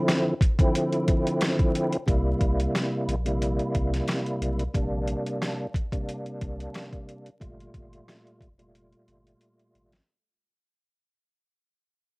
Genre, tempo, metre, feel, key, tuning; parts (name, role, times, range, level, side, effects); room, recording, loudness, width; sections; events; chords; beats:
hip hop, boom-bap hip-hop; 90 BPM; 4/4; swing 54% on 16ths; A4 = 440 Hz
tonewheel organ; accompaniment; 0.0-10.0 s; Bb2 to F4; -27 LUFS; equal; overdrive, chorus vibrato, slow rotary speaker, plate reverb
boom bap sampler-style drum kit; drums; 0.1-10.1 s; hi-hat, kick drum, rim click, snare drum; -25 LUFS; equal; cassette tape
warm sub bass; bass; 2.1-10.0 s; F1 to C2; -29 LUFS; equal
light reverb; home recording on cassette, vinyl crackle; -24 LUFS; side -28 dB against mid
0.0-10.1 A section
break 0.0-2.1; fade-out 0.0-10.1; drum fill 8.7-10.1
0.0 Dm9; 2.1 C7; 4.7 Bb69; 7.4 Gm9
0.08 0.74 1.41 | 2.08 2.74 3.41 4.08 | 4.74 5.41 6.08 6.74 | 7.41 8.08 8.74 9.41